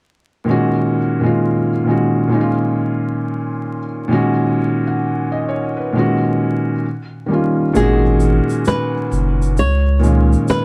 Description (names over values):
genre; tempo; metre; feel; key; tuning
lo-fi hip hop; 66 BPM; 4/4; swing 66% on 16ths; G# dorian; A4 = 440 Hz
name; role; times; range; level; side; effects
felt-muted upright piano; accompaniment; 0.4-10.6 s; A#2 to F#5; -18 LUFS; equal; low-pass filter
flamenco guitar; melody; 7.8-10.6 s; G#4 to C#5; -23 LUFS; equal; low-pass filter
saturated sub bass; bass; 7.8-10.4 s; F#1 to C#2; -17 LUFS; equal; none
cajon; drums; 7.8-10.6 s; none; -28 LUFS; equal; vintage 12-bit sampler grit
tube shaker; percussion; 7.8-10.6 s; none; -42 LUFS; equal; none
room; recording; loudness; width
light reverb, small room ambience; dark, warm production, vinyl crackle; -17 LUFS; mono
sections
0.5-7.7 A section; 7.7-10.6 B section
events
kick muted 7.7-10.6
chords
0.5 G#5; 2.3 C#; 4.1 D#m7; 6.8 D#7; 7.7 G#m7; 9.6 C#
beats
| 0.48 1.39 2.29 3.20 | 4.11 5.02 5.93 6.84 | 7.75 8.66 9.57 10.48